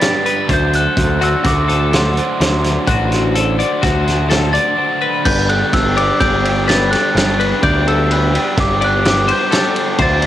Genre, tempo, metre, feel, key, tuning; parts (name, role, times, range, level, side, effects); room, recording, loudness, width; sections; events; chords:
math rock and midwest emo; 126 BPM; 5/4; straight; A4 = 439 Hz
glockenspiel with rubber mallets; melody; 0.0-10.2 s; C6 to A6; -18 LUFS; equal; cassette tape
twelve-string electric guitar; accompaniment; 0.0-7.6 s; G2 to C5; -29 LUFS; right 8 dB
twelve-string electric guitar; arpeggios; 0.0-10.2 s; F#4 to D5; -21 LUFS; left 7 dB; plate reverb
biting overdriven guitar; riff; 0.0-10.3 s; D3 to C5; -20 LUFS; equal
loose indie drum kit; drums; 0.0-10.3 s; crash cymbal, hi-hat, kick drum, ride cymbal, snare drum; -18 LUFS; equal; cassette tape
growling picked electric bass; bass; 0.5-10.3 s; G1 to D2; -18 LUFS; equal; overdrive
light reverb; home recording on cassette; -12 LUFS; side -12 dB against mid
0.0-5.2 A section; 5.2-10.3 B section
break 4.8-5.2
0.5 D; 5.2 Gmaj9